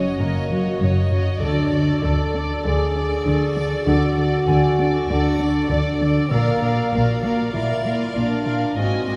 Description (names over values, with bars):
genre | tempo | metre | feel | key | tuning
cinematic | 98 BPM | 4/4 | straight | unclear | A4 = 441 Hz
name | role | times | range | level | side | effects
warm chamber violin section | melody | 0.0-9.2 s | D5 to Ab5 | -34 LUFS | equal | none
warm chamber violin section | second line | 0.0-9.2 s | Db5 to Eb5 | -33 LUFS | equal | none
dark chamber viola section | accompaniment | 0.0-9.2 s | Gb4 to Bb4 | -34 LUFS | equal | none
backwards swelling texture | sustained chords | 0.0-9.2 s | F4 to Eb5 | -36 LUFS | equal | built-in reverb
mellow French horn section | sustained chords | 0.0-9.2 s | Bb3 to A4 | -25 LUFS | equal | none
smooth gliding synth bass | riff | 0.0-9.2 s | Gb2 to D4 | -26 LUFS | equal | none
dark chamber double bass section | bass | 0.0-9.2 s | Gb1 to D2 | -28 LUFS | equal | none
warm chamber cello section | bass | 0.0-9.2 s | Gb2 to D3 | -29 LUFS | equal | none
concert harp | texture | 0.2-9.2 s | Bb4 to Fb6 | -39 LUFS | equal | none
reverse cymbal | sound effects | 8.8-9.2 s | none | barely audible | none | none
room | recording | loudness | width
wet church reverb, RT60 3.6 s | recorded in a church or concert hall | -20 LUFS | mono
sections
0.0-9.2 A section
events
none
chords
0.0 Gb6; 1.4 D; 6.3 Bb